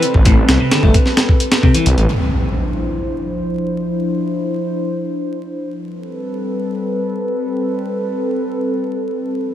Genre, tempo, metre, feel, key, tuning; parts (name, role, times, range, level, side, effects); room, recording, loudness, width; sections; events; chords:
breakbeat, breaks; free time; D minor; A4 = 440 Hz
warbly tape-like pad; sustained chords; 0.0-9.5 s; F3 to C5; -20 LUFS; left 1 dB; chorus, built-in reverb, sidechain pumping
electric guitar at the edge of break-up; riff; 0.0-1.9 s; A2 to A3; -18 LUFS; left 1 dB; overdrive, vintage 12-bit sampler grit, tape echo
breakbeat sampler-style drum kit; drums; 0.0-2.1 s; hi-hat, kick drum, snare drum; -13 LUFS; equal
detuned saw bass; bass; 0.1-2.1 s; G1 to C2; -14 LUFS; equal; tube saturation
impact; sound effects; 2.1-3.9 s; -21 LUFS; equal
light reverb; vinyl crackle; -15 LUFS; side -11 dB against mid
0.0-2.1 A section; 2.1-9.5 B section
impact 2.1-3.9; filter sweep on ambient pad 2.1-9.5
0.0 Am9; 2.1 Dm9; 5.8 Am9